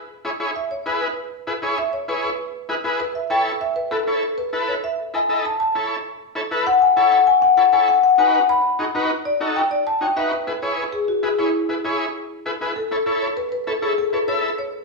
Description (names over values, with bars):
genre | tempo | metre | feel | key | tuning
latin | 197 BPM | 4/4 | straight | E major | A4 = 441 Hz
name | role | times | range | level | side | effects
marimba with soft mallets | melody | 0.0-14.8 s | E4 to B5 | -19 LUFS | left 3 dB | slapback echo
combo organ | accompaniment | 0.2-14.5 s | D#4 to E5 | -24 LUFS | left 1 dB | none
room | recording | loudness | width
wet large studio reverb, RT60 1.0 s | band playing live in one room | -18 LUFS | side -1 dB against mid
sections
0.6-10.3 A section; 10.3-14.8 B section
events
marimba solo 0.6-10.3; transistor combo organ fill 12.3-12.8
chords
0.0 E; 3.0 A; 7.9 B7; 10.3 E; 12.8 A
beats
0.25 | 0.56 0.86 1.17 1.47 | 1.78 2.08 2.39 2.70 | 3.00 3.31 3.61 3.92 | 4.22 4.53 4.83 5.14 | 5.45 5.75 6.05 6.36 | 6.67 6.97 7.28 7.58 | 7.88 8.19 8.49 8.80 | 9.10 9.41 9.71 10.02 | 10.32 10.63 10.93 11.23 | 11.54 11.85 12.15 12.46 | 12.76 13.07 13.37 13.68 | 13.98 14.29 14.59